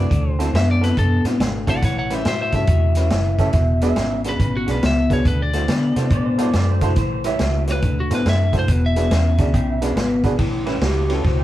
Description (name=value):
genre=electric blues shuffle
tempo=140 BPM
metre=4/4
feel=swing 64% on 8ths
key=A major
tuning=A4 = 438 Hz
part: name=lightly driven lead guitar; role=melody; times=0.0-10.1 s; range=F#4 to F#5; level=-26 LUFS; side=left 2 dB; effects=none
part: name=warm upright piano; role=accompaniment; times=0.0-11.2 s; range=C4 to D5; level=-28 LUFS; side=right 4 dB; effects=none
part: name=electric guitar through a small old amp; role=riff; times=0.0-11.4 s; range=E2 to B3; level=-24 LUFS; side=left 3 dB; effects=none
part: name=vintage muted fingered electric bass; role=bass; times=0.0-11.4 s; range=E1 to D3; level=-20 LUFS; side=equal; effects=none
part: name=vintage drum kit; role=drums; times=0.1-11.4 s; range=hi-hat, kick drum, ride cymbal, snare drum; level=-22 LUFS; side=equal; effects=none
part: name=electric guitar through a small old amp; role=second line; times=3.4-11.4 s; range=G4 to G5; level=-27 LUFS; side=right 3 dB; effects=none
room=light reverb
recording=band playing live in one room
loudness=-16 LUFS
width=side -14 dB against mid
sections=0.0-10.4 A section; 10.4-11.4 B section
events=clean electric guitar solo 10.4-11.4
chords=0.0 D7; 1.8 A7; 3.5 E7; 5.3 D7; 7.0 A7; 7.8 D7; 8.7 E7; 10.4 A7